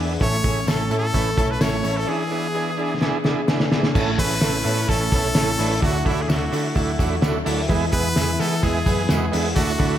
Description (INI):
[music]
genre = jangly indie pop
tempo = 128 BPM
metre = 4/4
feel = straight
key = A major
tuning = A4 = 441 Hz
[part]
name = combo organ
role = accompaniment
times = 0.0-10.0 s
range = G#3 to B4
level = -26 LUFS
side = right 5 dB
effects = slapback echo
[part]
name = picked twelve-string acoustic guitar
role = accompaniment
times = 0.0-10.0 s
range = A2 to A4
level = -29 LUFS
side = right 4 dB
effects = slapback echo
[part]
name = direct-recorded clean electric guitar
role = arpeggios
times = 0.0-10.0 s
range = A2 to A4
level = -28 LUFS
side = left 6 dB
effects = spring reverb, slapback echo
[part]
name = vintage muted picked electric bass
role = bass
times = 0.0-10.0 s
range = A1 to E3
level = -25 LUFS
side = equal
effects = none
[part]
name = brilliant trumpet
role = melody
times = 0.2-10.0 s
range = E4 to C#5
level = -26 LUFS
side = equal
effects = none
[part]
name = cloth-damped thuddy drum kit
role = drums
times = 0.2-9.9 s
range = crash cymbal, hi-hat, kick drum, snare drum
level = -23 LUFS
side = equal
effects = none
[part]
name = tambourine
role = percussion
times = 0.7-9.7 s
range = none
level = -42 LUFS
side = left 9 dB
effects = none
[sound]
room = moderate lush hall reverb, RT60 1.6 s, small room reverb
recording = big arena sound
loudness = -18 LUFS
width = side -11 dB against mid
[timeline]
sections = 0.0-4.0 A section; 4.0-10.0 B section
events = drum fill 3.0-4.0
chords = 0.2 A; 2.1 E7; 4.0 A; 5.8 Dadd9; 7.7 E